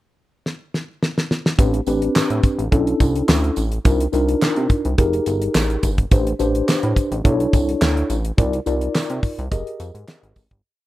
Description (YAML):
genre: early-eighties boogie funk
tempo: 106 BPM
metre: 4/4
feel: straight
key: unclear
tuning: A4 = 440 Hz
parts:
  - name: damped 70s drum kit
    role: drums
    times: 0.5-10.6 s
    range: handclaps, hi-hat, kick drum, snare drum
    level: -18 LUFS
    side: equal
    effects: none
  - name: mellow tine electric piano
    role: accompaniment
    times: 1.6-10.4 s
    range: C4 to Eb5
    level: -21 LUFS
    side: left 1 dB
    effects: fast stereo tremolo
  - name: chorused synth bass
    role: bass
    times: 1.6-10.6 s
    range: F1 to C3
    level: -22 LUFS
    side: equal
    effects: none
  - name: tambourine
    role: percussion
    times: 1.6-10.5 s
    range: none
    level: -37 LUFS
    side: right 10 dB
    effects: none
room: light reverb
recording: rough home demo mix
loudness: -17 LUFS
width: side -16 dB against mid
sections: 0.0-1.6 pickup bar; 1.6-10.6 verse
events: drum fill 0.5-1.6; fade-out 8.4-10.6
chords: 0.0 N.C.; 1.6 Am11; 2.7 Bm11; 3.9 Cm11; 5.0 Fm11; 6.1 Am11; 7.2 Bm11; 8.4 Cm11; 9.5 Fm11